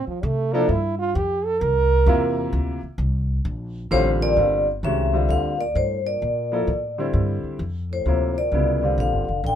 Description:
jazz; 130 BPM; 4/4; swing 65% on 8ths; G dorian; A4 = 445 Hz
breathy trombone; second line; 0.0-9.6 s; A2 to Bb4; -25 LUFS; right 4 dB
upright bass; bass; 0.0-9.6 s; F1 to C3; -24 LUFS; equal
warm concert grand piano; accompaniment; 0.5-9.2 s; C3 to A4; -25 LUFS; left 1 dB
vibraphone with medium mallets; melody; 3.9-9.6 s; C5 to G5; -23 LUFS; left 3 dB
moderate studio reverb, RT60 0.5 s; minimal, uncompressed stereo recording; -20 LUFS; side -9 dB against mid
0.0-4.4 A section; 4.4-9.6 B section
trombone solo 0.0-4.4
0.0 Gm11
0.23 | 0.69 1.16 1.61 2.08 | 2.54 3.00 3.46 3.92 | 4.38 4.84 5.30 5.76 | 6.22 6.68 7.15 7.61 | 8.07 8.53 8.99 9.45

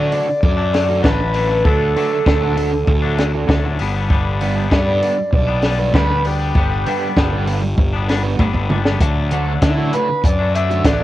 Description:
indie rock; 98 BPM; 4/4; straight; G major; A4 = 438 Hz
overdriven semi-hollow guitar; melody; 0.0-11.0 s; E4 to E5; -20 LUFS; equal; phaser, cassette tape
overdriven semi-hollow guitar; riff; 0.0-11.0 s; D3 to B4; -25 LUFS; right 6 dB; wide subtle chorus, cassette tape
twangy electric guitar; riff; 0.0-11.0 s; G2 to D4; -25 LUFS; left 6 dB; wide subtle chorus, cassette tape
fuzz fingered electric bass; bass; 0.0-11.0 s; G1 to D3; -19 LUFS; equal; overdrive
compact cocktail drum kit; drums; 0.1-11.0 s; hi-hat, kick drum, snare drum, toms; -18 LUFS; equal; cassette tape
small room ambience; home recording on cassette; -14 LUFS; side -14 dB against mid
0.0-9.0 A section; 9.0-11.0 B section
drum fill 8.4-9.0; overdriven electric guitar solo 9.0-11.0
0.0 D; 3.8 G; 9.0 D
0.43 1.04 | 1.66 2.27 2.88 3.49 | 4.11 4.72 5.33 5.94 | 6.56 7.17 7.78 8.39 | 9.00 9.61 10.22 10.84

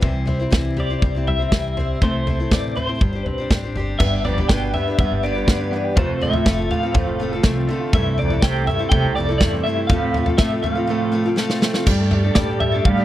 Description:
indie folk with a building arrangement; 122 BPM; 4/4; straight; A4 = 441 Hz
fingerpicked steel-string acoustic guitar; accompaniment; 0.0-7.9 s; G2 to A4; -30 LUFS; equal
picked old ladder-braced acoustic guitar; accompaniment; 0.0-13.0 s; C3 to C5; -27 LUFS; left 6 dB
upright bass; bass; 0.0-13.0 s; F1 to G3; -24 LUFS; equal
natural country drum kit; drums; 0.0-13.0 s; crash cymbal, kick drum, snare drum, toms; -19 LUFS; equal
electric guitar through a small old amp; melody; 0.8-13.0 s; C5 to G5; -25 LUFS; left 1 dB; tremolo
warm cello; second line; 4.0-13.0 s; F2 to C3; -26 LUFS; right 3 dB
clear upright piano; arpeggios; 4.0-13.0 s; G3 to B4; -26 LUFS; right 5 dB
mellow tonewheel organ; sustained chords; 7.9-13.0 s; C3 to A5; -32 LUFS; left 1 dB
felt-muted upright piano; accompaniment; 11.9-13.0 s; G1 to F5; -30 LUFS; left 2 dB
little or no reverb; dry, close 1970s-style studio recording; -17 LUFS; side -13 dB against mid
0.0-4.0 A section; 4.0-11.9 B section; 11.9-13.0 C section
drum fill 11.4-11.9
0.0 C; 2.0 Am/C; 3.0 Gsus4; 4.0 G; 6.0 F; 7.9 C6; 9.9 F; 11.9 Gsus2
| 0.03 0.53 1.02 1.52 | 2.01 2.51 3.00 3.50 | 3.99 4.49 4.98 5.47 | 5.97 6.46 6.95 7.44 | 7.94 8.43 8.92 9.41 | 9.90 10.39 10.89 11.38 | 11.87 12.36 12.86

